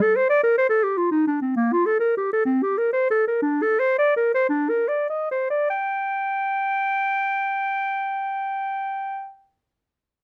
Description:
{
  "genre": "classical, baroque-style fantasia for unaccompanied clarinet",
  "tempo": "48-72 BPM (dotted quarters)",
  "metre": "6/8",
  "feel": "rubato",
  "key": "G minor",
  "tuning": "A4 = 439 Hz",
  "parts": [
    { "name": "warm clarinet", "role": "solo", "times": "0.0-9.3 s", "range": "Bb3 to G5", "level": "-22 LUFS", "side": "equal", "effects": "none" }
  ],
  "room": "light reverb",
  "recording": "close, detailed microphones",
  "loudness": "-22 LUFS",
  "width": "mono",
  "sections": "0.0-5.7 A section; 5.7-10.2 B section",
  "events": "slowing down 0.7-5.7",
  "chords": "none"
}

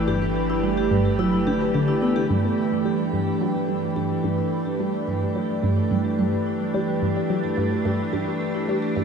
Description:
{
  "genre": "ambient, sequencer-driven space music",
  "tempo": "108 BPM",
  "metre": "4/4",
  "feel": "straight",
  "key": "G major",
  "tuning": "A4 = 440 Hz",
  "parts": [
    { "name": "evolving wavetable pad", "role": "sustained chords", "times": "0.0-9.0 s", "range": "E3 to B4", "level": "-23 LUFS", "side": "right 2 dB", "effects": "chorus, built-in reverb, shimmer reverb" },
    { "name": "vibraphone with medium mallets", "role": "arpeggios", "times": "0.0-9.0 s", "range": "E4 to B4", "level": "-32 LUFS", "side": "left 2 dB", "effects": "auto-pan, ping-pong delay, shimmer reverb" },
    { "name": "round analog bass", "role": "bass", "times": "0.0-2.3 s", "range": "G1", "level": "-33 LUFS", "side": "equal", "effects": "none" },
    { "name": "resonant blip pluck", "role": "riff", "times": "0.1-9.0 s", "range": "G2 to B3", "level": "-25 LUFS", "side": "equal", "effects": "phaser, ping-pong delay" }
  ],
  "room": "wet huge ambient reverb, RT60 8.0 s",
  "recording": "none",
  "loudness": "-21 LUFS",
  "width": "side -6 dB against mid",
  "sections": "0.0-2.3 A section; 2.3-9.0 B section",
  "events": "fade-in on vibraphone 2.3-9.0",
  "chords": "0.0 G6"
}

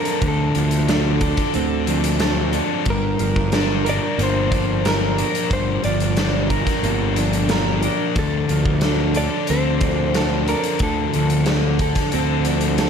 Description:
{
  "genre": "rock, shoegaze and dream pop",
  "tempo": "91 BPM",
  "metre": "4/4",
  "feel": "straight",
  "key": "G minor",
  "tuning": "A4 = 440 Hz",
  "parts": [
    { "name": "direct-recorded clean electric guitar", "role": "melody", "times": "0.0-11.8 s", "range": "A4 to D5", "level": "-27 LUFS", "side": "equal", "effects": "tape echo" },
    { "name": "direct-recorded clean electric guitar", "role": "riff", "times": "0.0-12.9 s", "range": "G2 to Bb4", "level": "-25 LUFS", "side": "right 13 dB", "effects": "reverse reverb" },
    { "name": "thick fuzz guitar", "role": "riff", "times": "0.0-12.9 s", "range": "G2 to Bb4", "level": "-23 LUFS", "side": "left 11 dB", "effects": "distortion, lush chorus" },
    { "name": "big rock drum kit", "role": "drums", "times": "0.1-12.9 s", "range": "hi-hat, kick drum, snare drum", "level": "-24 LUFS", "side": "equal", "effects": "none" },
    { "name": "fuzz picked electric bass", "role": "bass", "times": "0.2-12.9 s", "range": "G1 to D2", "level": "-22 LUFS", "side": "equal", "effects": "overdrive" }
  ],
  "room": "small room ambience",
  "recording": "none",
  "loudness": "-17 LUFS",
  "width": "side -7 dB against mid",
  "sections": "0.0-12.9 A section",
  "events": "none",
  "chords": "0.0 Dm7; 2.9 Gm7; 8.2 Dm7"
}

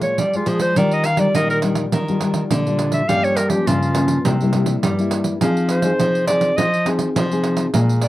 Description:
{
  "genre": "samba and choro",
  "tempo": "103 BPM",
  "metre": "4/4",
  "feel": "straight",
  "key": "unclear",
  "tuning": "A4 = 440 Hz",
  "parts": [
    { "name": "clear clarinet", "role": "melody", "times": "0.0-8.1 s", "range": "F4 to F5", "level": "-19 LUFS", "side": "equal", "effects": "none" },
    { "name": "nylon-string guitar", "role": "accompaniment", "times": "0.0-8.1 s", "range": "G2 to Ab4", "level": "-22 LUFS", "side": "left 2 dB", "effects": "none" },
    { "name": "nylon-string guitar", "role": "bass", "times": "0.0-8.1 s", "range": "Bb2 to Bb3", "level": "-20 LUFS", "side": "equal", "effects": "none" },
    { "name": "pandeiro", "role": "percussion", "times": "0.0-8.1 s", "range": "none", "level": "-24 LUFS", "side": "right 5 dB", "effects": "none" }
  ],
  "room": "little or no reverb",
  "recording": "dry, close 1970s-style studio recording",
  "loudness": "-16 LUFS",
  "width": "side -16 dB against mid",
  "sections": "0.0-8.1 A section",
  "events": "clarinet solo 0.0-8.1",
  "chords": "0.0 Bb7; 0.8 Ebmaj9; 3.1 Gm7b5; 4.3 C7; 5.4 Fm7"
}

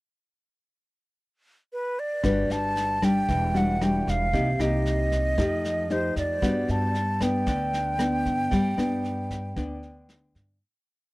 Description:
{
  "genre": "bossa nova",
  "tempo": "115 BPM",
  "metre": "4/4",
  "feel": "straight",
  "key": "G major",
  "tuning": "A4 = 440 Hz",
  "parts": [
    { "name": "breathy mellow silver concert flute", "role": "melody", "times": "1.7-10.1 s", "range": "B4 to A5", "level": "-28 LUFS", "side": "right 1 dB", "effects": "tape echo" },
    { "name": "nylon-string guitar", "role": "accompaniment", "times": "2.2-10.6 s", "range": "C3 to B4", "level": "-26 LUFS", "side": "left 1 dB", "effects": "none" },
    { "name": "upright bass", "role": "bass", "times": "2.2-10.6 s", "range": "E1 to G2", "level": "-30 LUFS", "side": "equal", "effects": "none" },
    { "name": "vintage brush drum kit", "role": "drums", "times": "2.2-10.4 s", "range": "kick drum, rim click, snare drum", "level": "-33 LUFS", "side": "equal", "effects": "none" }
  ],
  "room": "light reverb",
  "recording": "none",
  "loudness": "-23 LUFS",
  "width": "side -20 dB against mid",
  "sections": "0.1-2.2 pickup bar; 2.2-10.6 A section",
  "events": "fade-out 8.5-10.6",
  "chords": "0.1 N.C.; 2.2 Gmaj7; 3.3 Em9; 4.3 Cm7; 5.4 F9; 6.4 Gmaj7"
}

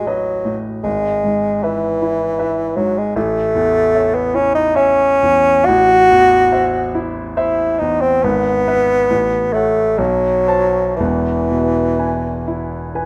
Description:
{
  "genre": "classical, romantic duo for bassoon and grand piano",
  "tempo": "58-82 BPM",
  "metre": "3/4",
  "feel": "rubato",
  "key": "E major",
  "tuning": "A4 = 439 Hz",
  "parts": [
    { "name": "warm bassoon", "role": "melody", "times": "0.0-12.9 s", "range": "E3 to F#4", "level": "-16 LUFS", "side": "equal", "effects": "none" },
    { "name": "warm concert grand piano", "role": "accompaniment", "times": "0.0-13.1 s", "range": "E1 to A5", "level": "-23 LUFS", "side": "equal", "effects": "none" }
  ],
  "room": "light reverb",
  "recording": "none",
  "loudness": "-16 LUFS",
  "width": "mono",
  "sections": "0.0-13.1 A section",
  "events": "none",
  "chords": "0.0 B7/A; 0.9 E/G#; 3.2 A; 5.7 Am; 8.2 E/G#; 9.1 F#m/A; 10.0 B5; 11.0 E"
}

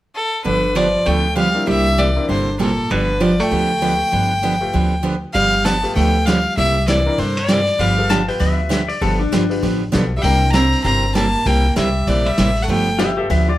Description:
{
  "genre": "country, western swing",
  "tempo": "196 BPM",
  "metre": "4/4",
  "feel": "swing 60% on 8ths",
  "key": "G mixolydian",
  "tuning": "A4 = 444 Hz",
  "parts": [
    { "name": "clear fiddle", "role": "melody", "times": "0.1-8.1, 10.2-13.0 s", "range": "A4 to Bb5", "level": "-19 LUFS", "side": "left 1 dB", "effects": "plate reverb" },
    { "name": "picked steel-string acoustic guitar", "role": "accompaniment", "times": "0.4-13.5 s", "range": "C3 to G4", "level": "-21 LUFS", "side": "right 3 dB", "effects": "none" },
    { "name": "archtop guitar, miked and amplified", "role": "second line", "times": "0.5-8.1, 10.2-13.0 s", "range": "Bb2 to C4", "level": "-22 LUFS", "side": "right 1 dB", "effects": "none" },
    { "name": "upright bass", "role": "bass", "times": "0.5-13.6 s", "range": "G1 to G2", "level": "-21 LUFS", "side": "equal", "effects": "none" },
    { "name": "bright upright piano", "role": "accompaniment", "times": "1.5-11.1, 13.2-13.3 s", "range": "A3 to B4", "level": "-27 LUFS", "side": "left 3 dB", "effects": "none" },
    { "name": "vintage drum kit", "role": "drums", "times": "5.3-13.4 s", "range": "hi-hat, kick drum, snare drum", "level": "-24 LUFS", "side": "equal", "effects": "none" },
    { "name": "pedal steel guitar", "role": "second line", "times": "8.1-9.8, 13.0-13.6 s", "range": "D4 to A5", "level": "-21 LUFS", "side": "left 5 dB", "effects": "none" }
  ],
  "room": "moderate studio reverb, RT60 0.8 s",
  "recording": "none",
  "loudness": "-15 LUFS",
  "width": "side -15 dB against mid",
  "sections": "0.5-5.3 A section; 5.3-13.6 B section",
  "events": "none",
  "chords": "0.5 G9; 1.7 C9; 2.9 G9; 6.6 C9; 7.8 G9; 10.2 C9; 12.7 G9"
}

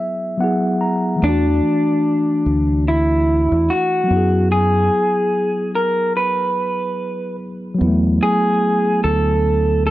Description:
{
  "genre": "lo-fi hip hop",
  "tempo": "73 BPM",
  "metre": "4/4",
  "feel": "swing 57% on 16ths",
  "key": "unclear",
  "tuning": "A4 = 440 Hz",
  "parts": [
    { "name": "mellow tine electric piano", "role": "accompaniment", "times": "0.0-9.9 s", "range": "E3 to Bb5", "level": "-20 LUFS", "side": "equal", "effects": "medium stereo tremolo, cassette tape, low-pass filter" },
    { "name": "electric guitar through a small old amp", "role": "melody", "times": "1.2-9.9 s", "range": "D4 to Cb5", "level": "-17 LUFS", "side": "equal", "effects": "low-pass filter, tape echo" },
    { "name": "deep dub fingered electric bass", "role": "bass", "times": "1.2-9.9 s", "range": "D2 to Gb2", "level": "-19 LUFS", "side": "equal", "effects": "none" }
  ],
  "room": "light reverb",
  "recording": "dry, gritty hardware recording",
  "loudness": "-15 LUFS",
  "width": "side -15 dB against mid",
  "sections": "0.0-9.9 A section",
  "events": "tine electric piano fill 0.0-1.2",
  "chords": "0.0 Gb9sus4; 1.2 E9sus4; 4.1 Gb9sus4; 7.8 E9sus4"
}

